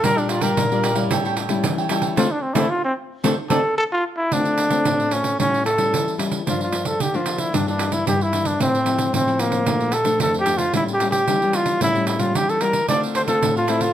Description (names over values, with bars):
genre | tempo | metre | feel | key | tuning
samba and choro | 112 BPM | 4/4 | straight | D minor | A4 = 442 Hz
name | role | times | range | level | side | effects
breathy trumpet | melody | 0.0-13.9 s | Bb3 to D5 | -20 LUFS | equal | plate reverb
cavaquinho | accompaniment | 0.0-3.6, 12.9-13.9 s | D4 to G5 | -28 LUFS | right 6 dB | none
nylon-string guitar | accompaniment | 0.0-13.9 s | F2 to F4 | -23 LUFS | left 4 dB | none
pandeiro | percussion | 0.0-13.9 s | none | -25 LUFS | right 6 dB | none
room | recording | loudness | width
moderate large studio reverb, RT60 0.9 s | close, detailed microphones | -18 LUFS | side -11 dB against mid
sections
0.0-4.3 A section; 4.3-13.9 B section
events
trumpet solo 0.0-4.3; band accent 2.2-4.3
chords
0.0 Gm7/Bb; 1.1 A7; 2.2 D5; 4.3 Dm7; 5.4 A7; 6.5 Gm7; 7.5 Em7b5/G; 8.6 Fmaj7/A; 9.7 Bbmaj7; 10.8 A7b9; 12.9 Dm7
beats
| 0.04 0.57 1.11 1.65 | 2.18 2.71 3.25 3.79 | 4.32 4.86 5.39 5.93 | 6.46 7.00 7.54 8.07 | 8.61 9.14 9.68 10.21 | 10.75 11.29 11.82 12.36 | 12.89 13.43